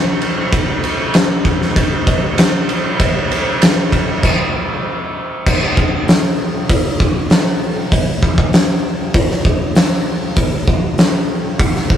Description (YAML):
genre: metal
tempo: 98 BPM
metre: 4/4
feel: straight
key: none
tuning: none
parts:
  - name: oversized low-tuned drum kit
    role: drums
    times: 0.2-12.0 s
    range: crash cymbal, hi-hat, kick drum, ride cymbal, snare drum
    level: -13 LUFS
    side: equal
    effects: none
room: light reverb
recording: rough rehearsal-room recording, tube saturation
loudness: -13 LUFS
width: side -9 dB against mid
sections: 0.0-5.5 A section; 5.5-12.0 B section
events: stop 4.2-5.5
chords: none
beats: | 0.53 1.15 1.76 2.38 | 3.00 3.61 4.23 4.85 | 5.46 6.08 6.69 7.31 | 7.92 8.53 9.15 9.76 | 10.38 10.99 11.60